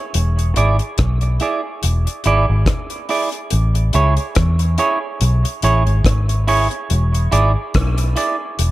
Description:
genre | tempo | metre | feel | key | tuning
dub reggae | 71 BPM | 4/4 | swing 57% on 16ths | A major | A4 = 440 Hz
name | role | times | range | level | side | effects
vintage muted fingered electric bass | bass | 0.1-8.7 s | E1 to E2 | -15 LUFS | equal | none
deep reggae drum kit | drums | 0.1-8.7 s | hi-hat, kick drum, rim click | -21 LUFS | left 1 dB | none
clean electric guitar | accompaniment | 0.6-8.4 s | E4 to D5 | -20 LUFS | right 4 dB | dub echo
room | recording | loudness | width
light reverb, studio ambience | none | -15 LUFS | side -16 dB against mid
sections
0.0-8.7 A section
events
none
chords
0.1 E7; 3.5 Amaj7; 6.9 E7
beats
| 0.14 0.98 1.83 2.67 | 3.52 4.36 5.20 6.05 | 6.89 7.74 8.58

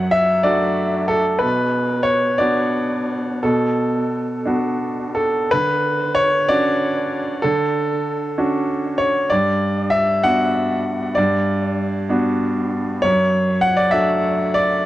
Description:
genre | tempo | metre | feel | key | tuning
neoclassical minimalist piano | 56-66 BPM (dotted quarters) | 6/8 | rubato | D major | A4 = 441 Hz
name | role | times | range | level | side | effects
clear grand piano | solo | 0.0-14.9 s | F#2 to F#5 | -16 LUFS | equal | analog delay
room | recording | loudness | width
moderate small room ambience, RT60 0.5 s | worn, warbling old tape, cassette tape, warbly pitch drift | -16 LUFS | side -15 dB against mid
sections
0.0-5.5 A section; 5.5-14.9 B section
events
none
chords
0.0 D/F#; 1.4 Bm7; 5.5 Dmaj7; 9.3 Gmaj7; 13.0 Dmaj7/F#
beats
0.46 | 1.42 2.40 | 3.42 4.46 | 5.51 6.47 | 7.42 8.37 | 9.30 10.24 | 11.17 12.11 | 13.04 13.96

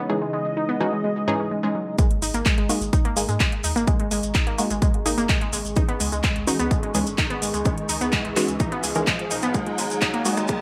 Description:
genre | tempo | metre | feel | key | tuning
progressive house | 127 BPM | 4/4 | straight | unclear | A4 = 440 Hz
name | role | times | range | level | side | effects
warm analog pad | sustained chords | 0.0-10.6 s | C#3 to D#6 | -34 LUFS | equal | chorus, sidechain pumping
unison pluck | stabs | 0.0-10.6 s | E3 to A#4 | -30 LUFS | equal | sidechain pumping, digital delay
glassy wavetable pluck | arpeggios | 0.1-10.5 s | G#2 to D#4 | -29 LUFS | equal | chorus, sidechain pumping, digital delay
electronic kick drum | drums | 2.0-10.6 s | none | -24 LUFS | equal | small room ambience
house drum kit | drums | 2.0-10.6 s | handclaps, hi-hat, rim click | -29 LUFS | equal | high-pass filter on hats, small room ambience, high-pass filter on snare
cabasa | percussion | 2.0-10.6 s | none | -34 LUFS | equal | none
riser | sound effects | 5.0-10.6 s | none | -37 LUFS | equal | none
dark detuned saw bass | bass | 2.2-10.5 s | F#1 to G#2 | -34 LUFS | equal | sidechain pumping
room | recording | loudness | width
moderate digital room reverb, RT60 1.0 s | high-pass filter | -23 LUFS | mono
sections
0.0-2.0 A section; 2.0-10.6 B section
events
filter sweep on synth arpeggio sound 0.0-2.0; filter sweep on synth pluck 0.0-2.0, 2.0-10.6; build-up 2.0-10.6; filter sweep on analog synth pad 2.0-10.6; riser 5.0-10.6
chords
0.0 C#madd9; 2.0 G#sus2; 5.8 C#madd9; 9.5 G#sus2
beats
| 0.10 0.57 1.04 1.51 | 1.99 2.46 2.93 3.40 | 3.88 4.35 4.82 5.29 | 5.76 6.24 6.71 7.18 | 7.66 8.13 8.60 9.07 | 9.54 10.02 10.49

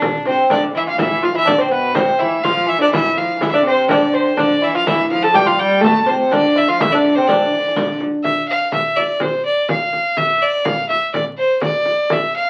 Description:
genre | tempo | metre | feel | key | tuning
medieval dance | 124 BPM | 2/4 | straight | D dorian | A4 = 440 Hz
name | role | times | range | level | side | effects
clear fiddle | melody | 0.0-12.5 s | D4 to A5 | -19 LUFS | equal | none
lute | second line | 0.0-8.0 s | D3 to A4 | -21 LUFS | equal | none
frame drum | percussion | 0.0-12.3 s | none | -26 LUFS | equal | none
warm viola da gamba | second line | 0.3-8.0 s | B2 to A3 | -23 LUFS | equal | none
riq | percussion | 0.5-8.0 s | none | -29 LUFS | equal | none
room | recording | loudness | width
wet studio ambience, RT60 0.5 s | very old 78 rpm record, vinyl crackle | -16 LUFS | mono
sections
0.5-8.2 A section; 8.2-12.5 B section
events
none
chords
none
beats
0.02 | 0.51 0.99 | 1.48 1.96 | 2.44 2.93 | 3.41 3.90 | 4.38 4.87 | 5.35 5.83 | 6.32 6.80 | 7.28 7.77 | 8.25 8.73 | 9.21 9.70 | 10.18 10.66 | 11.14 11.62 | 12.11

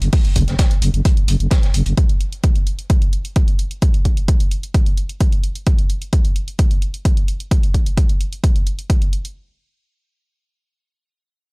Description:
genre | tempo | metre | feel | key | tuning
driving peak-time techno | 130 BPM | 4/4 | straight | unclear | A4 = 444 Hz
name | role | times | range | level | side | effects
growling FM bass | bass | 0.0-1.9 s | F#1 | -16 LUFS | equal | sidechain pumping
crunchy breakbeat drum kit | drums | 0.0-2.0 s | hi-hat, snare drum | -29 LUFS | equal | high-pass filter on hats, high-pass filter on snare, high-pass filter on room
electronic hi-hat | drums | 0.0-9.3 s | none | -30 LUFS | right 1 dB | none
electronic kick drum | drums | 0.1-9.0 s | none | -15 LUFS | equal | none
room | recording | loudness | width
small room reverb | dry, gritty hardware recording | -15 LUFS | side -38 dB against mid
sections
0.0-9.4 A section; 9.4-11.5 B section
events
none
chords
none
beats
| 0.13 0.59 1.05 1.51 | 1.97 2.44 2.90 3.36 | 3.82 4.28 4.74 5.20 | 5.67 6.13 6.59 7.05 | 7.51 7.97 8.44 8.90

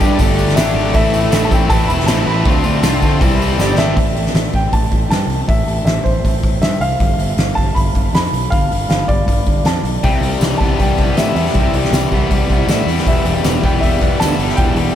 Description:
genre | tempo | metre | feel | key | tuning
indie rock | 158 BPM | 4/4 | straight | A minor | A4 = 440 Hz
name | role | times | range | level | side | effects
biting overdriven guitar | riff | 0.0-4.0, 10.0-14.9 s | E2 to G4 | -20 LUFS | left 6 dB | none
raw garage guitar | riff | 0.0-4.0, 10.0-14.9 s | G3 to B4 | -24 LUFS | right 8 dB | overdrive, wide subtle chorus, ping-pong delay
fuzz picked electric bass | bass | 0.0-14.9 s | E1 to D3 | -19 LUFS | equal | overdrive
loose indie drum kit | drums | 0.0-14.9 s | hi-hat, kick drum, snare drum | -16 LUFS | equal | none
tambourine | percussion | 0.0-3.8, 10.4-14.3 s | none | -35 LUFS | right 6 dB | none
dark upright piano | melody | 0.6-14.9 s | C5 to B5 | -21 LUFS | equal | ping-pong delay
room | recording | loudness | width
moderate huge ambient reverb, RT60 7.8 s | dreamy mix soaked in reverb | -12 LUFS | side -10 dB against mid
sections
0.0-4.0 A section; 4.0-14.9 B section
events
drum fill 3.6-4.0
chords
0.0 Gsus2; 1.0 Amadd9; 2.5 Dm7; 3.2 C; 3.6 Gsus4; 4.0 A5; 7.0 G7; 10.0 Cmaj7; 13.1 Em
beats
0.20 0.57 | 0.95 1.33 1.71 2.08 | 2.46 2.84 3.22 3.60 | 3.98 4.35 4.73 5.11 | 5.49 5.87 6.25 6.63 | 7.01 7.38 7.76 8.14 | 8.52 8.90 9.28 9.66 | 10.04 10.42 10.80 11.17 | 11.55 11.93 12.31 12.69 | 13.07 13.45 13.83 14.21 | 14.58

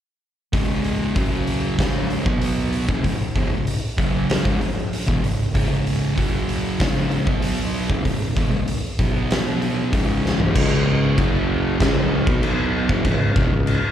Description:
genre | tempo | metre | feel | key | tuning
stoner and doom metal | 96 BPM | 4/4 | straight | C# minor | A4 = 440 Hz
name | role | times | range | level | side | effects
thick fuzz guitar | riff | 0.5-13.8 s | C#2 to B3 | -22 LUFS | equal | distortion
oversized low-tuned drum kit | drums | 0.5-13.8 s | crash cymbal, hi-hat, kick drum, snare drum, toms | -21 LUFS | equal | none
breathy tuba | bass | 10.6-13.8 s | E1 to C#2 | -23 LUFS | equal | overdrive
room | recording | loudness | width
light reverb | live gig heard through the venue's PA, club reverb | -18 LUFS | side -10 dB against mid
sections
0.5-10.6 A section; 10.6-13.9 B section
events
drum fill 10.2-10.6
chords
0.5 C#5; 1.2 F#5; 1.8 C#5; 2.3 B5; 2.9 C#5; 6.2 F#5; 6.8 C#5; 7.3 B5; 7.9 C#m; 9.0 B5; 9.9 C#m; 10.6 C#5; 11.2 F#5; 11.8 C#5; 12.3 B5; 12.9 C#m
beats
| 0.53 1.16 1.79 2.41 | 3.04 3.67 4.29 4.92 | 5.55 6.17 6.80 7.42 | 8.05 8.68 9.30 9.93 | 10.55 11.18 11.80 12.42 | 13.05 13.67

